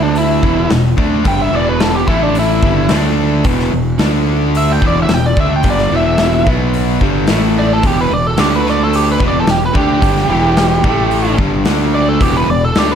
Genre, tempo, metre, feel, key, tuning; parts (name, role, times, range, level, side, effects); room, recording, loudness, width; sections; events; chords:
hard rock; 110 BPM; 4/4; straight; E minor; A4 = 440 Hz
biting lead guitar; melody; 0.0-12.9 s; D4 to G5; -16 LUFS; right 1 dB; overdrive
cranked stack guitar; riff; 0.0-12.9 s; E2 to D4; -18 LUFS; left 11 dB; overdrive
sludgy distorted guitar; riff; 0.0-12.9 s; E2 to D4; -18 LUFS; right 10 dB; overdrive
fuzz fingered electric bass; bass; 0.0-12.9 s; E1 to D2; -18 LUFS; equal; overdrive
big rock drum kit; drums; 0.2-12.9 s; hi-hat, kick drum, snare drum; -17 LUFS; equal
moderate large studio reverb, RT60 0.9 s, small room ambience; -11 LUFS; side -8 dB against mid
0.0-12.9 A section
lead electric guitar solo 0.0-12.9
0.4 Em; 2.1 A5; 2.6 Em; 2.9 D5; 3.4 E5; 4.0 D5; 4.8 Em; 6.5 B5; 7.0 G5; 7.3 A5; 7.8 E5; 8.4 D5; 9.2 Em; 10.8 A5; 11.4 G5; 11.7 D5; 12.2 E5